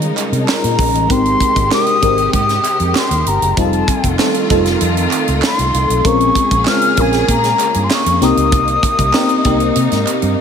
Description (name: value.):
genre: polished 1980s jazz-funk pop.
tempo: 97 BPM.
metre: 4/4.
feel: straight.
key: F minor.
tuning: A4 = 438 Hz.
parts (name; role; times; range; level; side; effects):
FM electric piano with soft pad layer; accompaniment; 0.0-10.4 s; G3 to Bb4; -17 LUFS; left 1 dB; phaser, wide subtle chorus.
warm studio string section; sustained chords; 0.0-10.4 s; C3 to Ab4; -22 LUFS; left 1 dB; none.
vintage muted fingered electric bass; bass; 0.0-10.3 s; F1 to C3; -19 LUFS; right 1 dB; none.
tight funk drum kit; drums; 0.0-10.4 s; hi-hat, kick drum, snare drum; -18 LUFS; right 1 dB; gated reverb.
group handclap; percussion; 0.2-10.2 s; none; -27 LUFS; right 11 dB; none.
mellow jazz flute; melody; 0.4-10.4 s; Ab5 to F6; -16 LUFS; left 2 dB; none.
room: light reverb, small room ambience.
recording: none.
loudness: -12 LUFS.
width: side -7 dB against mid.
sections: 0.0-10.4 A section.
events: none.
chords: 0.0 Eb7sus4; 1.1 Abmaj7; 3.6 F7; 6.0 Bbm7; 8.2 Cm7.